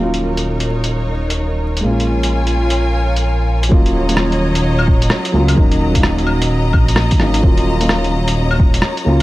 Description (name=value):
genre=future garage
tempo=129 BPM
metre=4/4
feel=swing 65% on 16ths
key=Eb minor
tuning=A4 = 436 Hz
part: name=felt-muted upright piano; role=accompaniment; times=0.0-9.2 s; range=Gb3 to F4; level=-20 LUFS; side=equal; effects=sidechain pumping, tape echo
part: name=clear studio string section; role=sustained chords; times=0.0-9.2 s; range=Gb3 to Bb5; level=-22 LUFS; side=left 1 dB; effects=sidechain pumping
part: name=dark detuned saw bass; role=bass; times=0.0-9.2 s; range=Eb1 to Eb2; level=-17 LUFS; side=equal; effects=none
part: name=lo-fi sampler-style drum kit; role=drums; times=0.1-9.2 s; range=claves, hi-hat, rim click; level=-20 LUFS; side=equal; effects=none
part: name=electronic kick drum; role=drums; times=3.7-8.7 s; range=none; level=-13 LUFS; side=equal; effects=none
room=light reverb, digital ambience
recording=vinyl crackle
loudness=-13 LUFS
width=side -17 dB against mid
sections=0.0-3.7 A section; 3.7-9.2 B section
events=none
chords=0.0 Ebm7; 1.9 Bbm7; 3.7 Ebm7